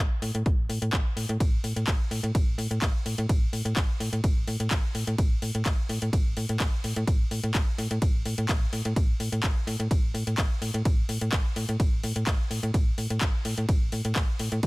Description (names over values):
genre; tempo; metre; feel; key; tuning
filtered disco house; 127 BPM; 4/4; straight; unclear; A4 = 440 Hz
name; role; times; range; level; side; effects
slap-like FM bass; bass; 0.0-14.7 s; A1 to A2; -29 LUFS; equal; sidechain pumping
house drum kit; drums; 0.2-14.7 s; handclaps, hi-hat, ride cymbal; -34 LUFS; left 1 dB; overdrive, sidechain pumping on hats, sidechain pumping on cymbals
electronic kick drum; drums; 0.5-14.7 s; none; -25 LUFS; equal; overdrive
room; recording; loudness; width
little or no reverb; none; -24 LUFS; side -23 dB against mid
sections
0.0-14.7 A section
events
none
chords
none